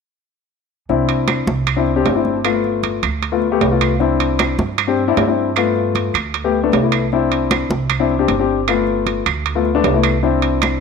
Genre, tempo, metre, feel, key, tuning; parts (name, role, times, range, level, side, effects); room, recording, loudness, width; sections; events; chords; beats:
Afro-Cuban jazz; 154 BPM; 4/4; straight; C major; A4 = 441 Hz
warm upright piano; accompaniment; 0.9-10.8 s; A3 to G4; -17 LUFS; left 7 dB
upright bass; bass; 0.9-10.8 s; G1 to G2; -22 LUFS; right 3 dB
congas; percussion; 0.9-10.8 s; -25 LUFS; equal
timbales; percussion; 1.1-10.8 s; -22 LUFS; right 14 dB
claves; percussion; 1.3-10.8 s; -27 LUFS; right 14 dB
moderate echo chamber reverb, RT60 1.4 s, small room ambience; 1960s-style stereo with parts hard left and right; -15 LUFS; side -5 dB against mid
0.9-10.8 A section
0.9 Cadd9; 2.5 G7; 4.0 Cadd9; 5.6 G7; 7.1 Cadd9; 8.7 G7; 10.2 Cadd9
| 0.89 1.28 1.67 2.06 | 2.45 2.84 3.23 3.62 | 4.01 4.40 4.79 5.17 | 5.56 5.95 6.34 6.73 | 7.12 7.51 7.90 8.29 | 8.68 9.07 9.46 9.84 | 10.23 10.62